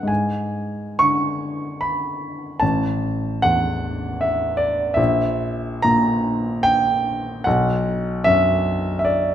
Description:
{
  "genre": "classical, romantic nocturne for solo piano",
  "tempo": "62-81 BPM",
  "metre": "3/4",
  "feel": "rubato",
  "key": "unclear",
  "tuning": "A4 = 440 Hz",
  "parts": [
    { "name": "warm concert grand piano", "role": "solo", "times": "0.0-9.3 s", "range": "A1 to C#6", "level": "-18 LUFS", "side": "equal", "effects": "none" }
  ],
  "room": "wet recital hall reverb, RT60 1.6 s",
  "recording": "none",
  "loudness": "-18 LUFS",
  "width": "side -10 dB against mid",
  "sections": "0.0-9.3 A section",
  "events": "none",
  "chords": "0.1 G#dim; 2.6 A5; 5.0 N.C.; 7.5 B5",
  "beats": "| 0.09 1.01 1.82 | 2.62 3.44 4.23 | 4.98 5.85 6.66 | 7.45 8.26 9.05"
}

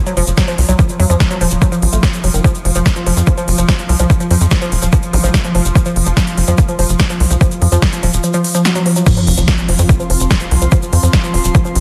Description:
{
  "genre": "psychedelic trance",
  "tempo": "145 BPM",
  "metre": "4/4",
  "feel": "straight",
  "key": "unclear",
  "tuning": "A4 = 440 Hz",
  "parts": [
    { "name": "swarming drone", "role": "sustained chords", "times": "0.1-11.8 s", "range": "F3", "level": "-24 LUFS", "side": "equal", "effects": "built-in reverb, sidechain pumping" },
    { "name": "woody wave-folded pluck", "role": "riff", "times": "0.1-11.7 s", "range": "Eb3 to Gb4", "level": "-22 LUFS", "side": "equal", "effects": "chorus, sidechain pumping, dub echo" },
    { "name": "big-room dance drum kit", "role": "drums", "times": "0.1-11.8 s", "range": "crash cymbal, hi-hat, snare drum", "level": "-22 LUFS", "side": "equal", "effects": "overdrive" },
    { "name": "egg shaker", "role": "percussion", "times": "0.1-11.7 s", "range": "none", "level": "-28 LUFS", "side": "equal", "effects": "none" },
    { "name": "tight sequencer bass", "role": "bass", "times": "0.2-11.8 s", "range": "Eb1 to F2", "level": "-16 LUFS", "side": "equal", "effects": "none" },
    { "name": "electronic kick drum", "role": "drums", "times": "0.4-11.6 s", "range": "none", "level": "-15 LUFS", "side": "equal", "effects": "overdrive" },
    { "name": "zap and sub drop", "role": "sound effects", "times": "5.1-5.2, 9.1-10.7 s", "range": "none", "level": "-24 LUFS", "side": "equal", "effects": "none" },
    { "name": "airy breathy pad", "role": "texture", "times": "9.1-11.8 s", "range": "C4 to C6", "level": "-26 LUFS", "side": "equal", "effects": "chorus, sidechain pumping" }
  ],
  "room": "light reverb",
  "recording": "dense, heavily limited modern master, lossy compression artefacts",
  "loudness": "-13 LUFS",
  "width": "mono",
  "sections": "0.0-9.1 A section; 9.1-11.8 B section",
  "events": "drop 9.1-11.8; impact 9.1-10.7",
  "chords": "0.0 F5",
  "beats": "0.38 | 0.79 1.20 1.62 2.03 | 2.44 2.86 3.27 3.69 | 4.10 4.51 4.93 5.34 | 5.75 6.17 6.58 7.00 | 7.41 7.82 8.24 8.65 | 9.06 9.48 9.89 10.31 | 10.72 11.13 11.55"
}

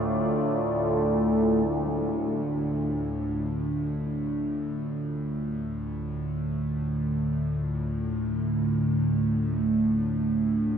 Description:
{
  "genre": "dark ambient drone",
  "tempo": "free time",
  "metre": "none",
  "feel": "none",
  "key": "D minor",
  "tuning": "A4 = 440 Hz",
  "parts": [
    { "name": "deep dark ambient pad", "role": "sustained chords", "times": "0.0-10.8 s", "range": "A3 to D5", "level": "-31 LUFS", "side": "equal", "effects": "chorus, built-in reverb" },
    { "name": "overtone-sweeping drone", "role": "drone", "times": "0.0-10.8 s", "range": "D2 to A2", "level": "-26 LUFS", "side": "right 1 dB", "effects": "chorus, built-in reverb" },
    { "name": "bubbling stepped-filter texture", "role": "texture", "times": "0.0-1.7 s", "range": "D4 to D5", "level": "-40 LUFS", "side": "left 3 dB", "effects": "none" }
  ],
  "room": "wet cathedral reverb, RT60 5.8 s",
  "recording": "none",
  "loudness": "-25 LUFS",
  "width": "side -8 dB against mid",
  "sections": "0.0-1.7 A section; 1.7-10.8 B section",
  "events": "fade-in on ambient pad 1.7-10.8",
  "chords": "0.0 Dm",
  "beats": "free time"
}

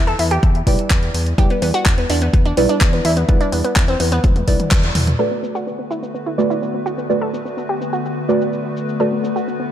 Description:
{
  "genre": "progressive house",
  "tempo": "126 BPM",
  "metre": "4/4",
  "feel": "straight",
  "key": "unclear",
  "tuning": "A4 = 438 Hz",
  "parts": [
    { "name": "analog pluck", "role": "arpeggios", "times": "0.0-9.7 s", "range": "B3 to A4", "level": "-22 LUFS", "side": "equal", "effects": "chorus, vintage 12-bit sampler grit, sidechain pumping, ping-pong delay" },
    { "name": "deep mellow chord stab", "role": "stabs", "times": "0.0-9.7 s", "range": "G3 to D5", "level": "-22 LUFS", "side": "right 2 dB", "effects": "chorus, sidechain pumping, ping-pong delay" },
    { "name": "fat analog bass", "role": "bass", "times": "0.0-5.1 s", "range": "B1 to E2", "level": "-20 LUFS", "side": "equal", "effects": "sidechain pumping" },
    { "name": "deep house drum kit", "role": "drums", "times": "0.1-9.6 s", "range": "handclaps, hi-hat, shaker, toms", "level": "-22 LUFS", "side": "equal", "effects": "low-pass filter on snare, low-pass filter on hats, low-pass filter on toms, low-pass filter on perc" },
    { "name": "electronic kick drum", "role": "drums", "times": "0.4-4.8 s", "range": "none", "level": "-16 LUFS", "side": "equal", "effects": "none" },
    { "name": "evolving wavetable pad", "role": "sustained chords", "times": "5.6-9.7 s", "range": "D3 to B4", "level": "-24 LUFS", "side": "left 3 dB", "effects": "chorus, built-in reverb, sidechain pumping" }
  ],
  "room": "light reverb",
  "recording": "dark, warm production",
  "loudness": "-15 LUFS",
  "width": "side -10 dB against mid",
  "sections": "0.0-5.2 A section; 5.2-9.7 B section",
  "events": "drum fill 4.2-5.2; band accent 4.7",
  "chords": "0.0 Em7; 5.2 Bm7",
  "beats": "0.43 0.91 | 1.38 1.86 2.33 2.81 | 3.29 3.76 4.24 4.71 | 5.19 5.67 6.14 6.62 | 7.10 7.57 8.05 8.53 | 9.00 9.48"
}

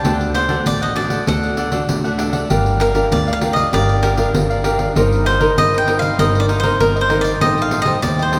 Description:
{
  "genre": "samba and choro",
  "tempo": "98 BPM",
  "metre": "4/4",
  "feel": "straight",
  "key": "G minor",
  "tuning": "A4 = 439 Hz",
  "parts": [
    { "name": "cavaquinho", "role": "melody", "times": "0.0-8.4 s", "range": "Bb4 to A5", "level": "-22 LUFS", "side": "equal", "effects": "none" },
    { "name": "cavaquinho", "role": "accompaniment", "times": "0.0-8.4 s", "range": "D4 to G5", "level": "-26 LUFS", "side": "equal", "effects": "none" },
    { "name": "nylon-string guitar", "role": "accompaniment", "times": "0.0-8.4 s", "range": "A2 to Bb4", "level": "-24 LUFS", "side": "equal", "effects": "none" },
    { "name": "upright bass", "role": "bass", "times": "0.0-8.4 s", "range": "G1 to G2", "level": "-23 LUFS", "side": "equal", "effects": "none" },
    { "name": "pandeiro", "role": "percussion", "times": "0.0-8.4 s", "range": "none", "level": "-24 LUFS", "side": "equal", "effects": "none" }
  ],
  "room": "wet church reverb, RT60 3.7 s",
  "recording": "recorded in a church or concert hall",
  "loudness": "-16 LUFS",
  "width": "mono",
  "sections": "0.0-8.4 A section",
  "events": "none",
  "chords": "0.0 D; 2.5 Gm7; 5.0 Cm7/G; 7.4 Am7b5",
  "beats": "| 0.04 0.66 1.27 1.89 | 2.50 3.12 3.73 4.34 | 4.96 5.57 6.19 6.80 | 7.42 8.03"
}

